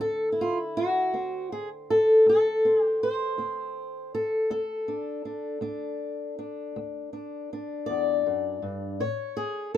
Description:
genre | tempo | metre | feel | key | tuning
acoustic country blues, solo or duo | 54 BPM (dotted quarters) | 12/8 | straight | D mixolydian | A4 = 441 Hz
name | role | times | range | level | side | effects
fingerpicked swing-style acoustic guitar | solo | 0.0-9.8 s | D2 to D5 | -24 LUFS | left 1 dB | none
room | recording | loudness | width
wet booth ambience, RT60 0.3 s | minimal, uncompressed stereo recording | -24 LUFS | side -11 dB against mid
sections
0.0-9.8 A section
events
none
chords
0.0 D7; 9.0 A

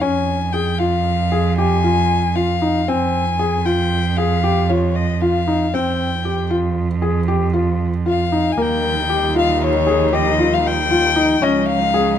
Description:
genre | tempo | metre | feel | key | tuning
contemporary instrumental, chamber music in an uneven meter | 232 BPM (eighths) | 11/8 | straight | F minor | A4 = 441 Hz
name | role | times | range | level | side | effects
dark violin | melody | 0.0-12.2 s | Db5 to Ab5 | -20 LUFS | left 6 dB | none
felt-muted upright piano | arpeggios | 0.0-12.1 s | Bb3 to Ab4 | -20 LUFS | left 2 dB | none
rich cello | bass | 0.0-12.2 s | Db2 to F2 | -20 LUFS | right 4 dB | none
dark studio string section | sustained chords | 8.6-12.2 s | F3 to Eb4 | -26 LUFS | right 2 dB | none
room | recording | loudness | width
light reverb | close, detailed microphones | -15 LUFS | side -9 dB against mid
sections
0.0-8.6 A section; 8.6-12.2 B section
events
none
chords
0.0 Fm; 2.9 F5; 8.6 Ebadd9; 11.4 Dbadd9

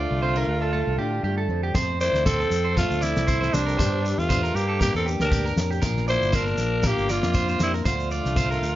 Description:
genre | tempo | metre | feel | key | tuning
highlife guitar band | 118 BPM | 4/4 | swing 55% on 16ths | unclear | A4 = 440 Hz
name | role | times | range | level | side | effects
raspy alto saxophone | melody | 0.0-8.8 s | D4 to C5 | -26 LUFS | right 1 dB | slapback echo
bright tenor saxophone | second line | 0.0-8.8 s | G3 to E4 | -34 LUFS | left 4 dB | none
fingerpicked steel-string acoustic guitar | accompaniment | 0.0-8.8 s | F2 to A4 | -32 LUFS | left 7 dB | none
electric guitar at the edge of break-up | arpeggios | 0.0-8.8 s | G4 to D5 | -29 LUFS | right 6 dB | slapback echo
fingered electric bass | bass | 0.0-8.8 s | G1 to A2 | -26 LUFS | equal | none
damped 70s drum kit | drums | 1.7-8.5 s | kick drum, snare drum | -25 LUFS | equal | none
shekere | percussion | 1.8-8.8 s | none | -32 LUFS | left 1 dB | none
room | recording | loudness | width
small room ambience | nothing above 7.5 kHz | -21 LUFS | side -14 dB against mid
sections
0.0-8.8 A section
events
none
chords
0.0 Dm; 1.8 F; 3.8 Gm; 5.8 Bb; 7.9 Dm

